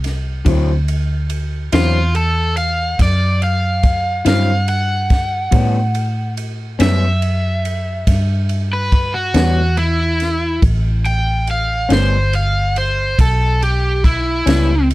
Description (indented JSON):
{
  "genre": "slow blues",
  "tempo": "47 BPM (dotted quarters)",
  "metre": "12/8",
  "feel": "straight",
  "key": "unclear",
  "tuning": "A4 = 440 Hz",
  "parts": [
    { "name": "vintage muted fingered electric bass", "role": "bass", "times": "0.0-14.9 s", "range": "G1 to A2", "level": "-17 LUFS", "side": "equal", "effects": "none" },
    { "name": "compact cocktail drum kit", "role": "drums", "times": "0.0-14.9 s", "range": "kick drum, ride cymbal, snare drum", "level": "-20 LUFS", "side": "equal", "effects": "none" },
    { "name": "electric guitar through a small old amp", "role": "accompaniment", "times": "0.4-14.7 s", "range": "A2 to E4", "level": "-20 LUFS", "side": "left 3 dB", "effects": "harmonic tremolo" },
    { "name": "cranked stack guitar", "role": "melody", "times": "1.7-14.9 s", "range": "E4 to G5", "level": "-19 LUFS", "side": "equal", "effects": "overdrive" }
  ],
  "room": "little or no reverb",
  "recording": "dark, warm production",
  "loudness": "-14 LUFS",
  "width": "side -18 dB against mid",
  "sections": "0.0-14.9 A section",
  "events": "none",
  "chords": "0.5 D9; 5.5 A9"
}